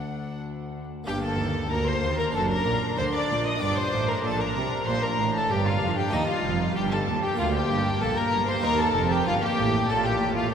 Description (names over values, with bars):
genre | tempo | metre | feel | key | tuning
classical, baroque-style concerto movement with solo episodes | 95 BPM | 4/4 | straight | G minor | A4 = 440 Hz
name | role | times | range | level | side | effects
rich chamber violin section | melody | 0.0-10.5 s | A4 to Eb6 | -32 LUFS | left 4 dB | none
rich violin | melody | 0.0-10.5 s | Eb4 to F#5 | -30 LUFS | left 2 dB | none
rich chamber violin section | second line | 0.0-10.5 s | Eb4 to F#5 | -30 LUFS | equal | none
harpsichord | accompaniment | 0.0-10.5 s | D2 to A4 | -35 LUFS | equal | none
warm chamber viola section | accompaniment | 0.0-10.5 s | G3 to D4 | -33 LUFS | equal | none
rich chamber double bass section | bass | 0.0-10.5 s | F1 to Eb2 | -31 LUFS | right 3 dB | none
warm chamber cello section | bass | 0.0-10.5 s | D2 to D3 | -30 LUFS | right 3 dB | none
room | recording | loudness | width
wet cathedral reverb, RT60 4.5 s | none | -22 LUFS | side -7 dB against mid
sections
0.0-1.1 A section; 1.1-10.5 B section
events
none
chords
0.0 D; 1.1 Gm; 2.3 D/F#; 3.6 Gm; 6.1 Eb; 7.4 Bb; 8.6 Eb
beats
0.44 | 1.08 1.71 2.35 2.98 | 3.61 4.24 4.87 5.50 | 6.13 6.76 7.39 8.01 | 8.64 9.27 9.90 10.53